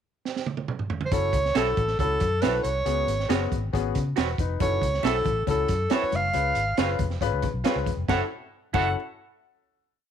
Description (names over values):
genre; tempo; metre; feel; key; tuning
uptempo 1960s-style soul; 138 BPM; 4/4; straight; unclear; A4 = 440 Hz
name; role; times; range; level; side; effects
crunchy breakbeat drum kit; drums; 0.3-8.8 s; crash cymbal, hi-hat, kick drum, snare drum, toms; -29 LUFS; right 4 dB; none
warm alto saxophone; melody; 1.1-8.9 s; A4 to F#5; -26 LUFS; right 2 dB; none
warm concert grand piano; accompaniment; 1.1-8.9 s; B3 to F#5; -30 LUFS; left 12 dB; none
vintage muted fingered electric bass; bass; 1.1-8.9 s; E1 to C#3; -29 LUFS; left 1 dB; none
electric guitar through a small old amp; stabs; 1.5-8.9 s; E4 to C#5; -32 LUFS; right 11 dB; tube saturation
congas; percussion; 4.6-8.9 s; none; -36 LUFS; left 12 dB; none
room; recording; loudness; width
light reverb, studio ambience; 1960s-style stereo with parts hard left and right; -23 LUFS; side -8 dB against mid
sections
0.0-1.1 pickup bar; 1.1-8.1 verse; 8.1-9.8 final chord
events
drum fill 0.3-1.1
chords
0.0 N.C.; 1.1 F#m7; 2.9 C#7sus4; 4.6 F#m7; 6.3 C#7; 8.1 F#m7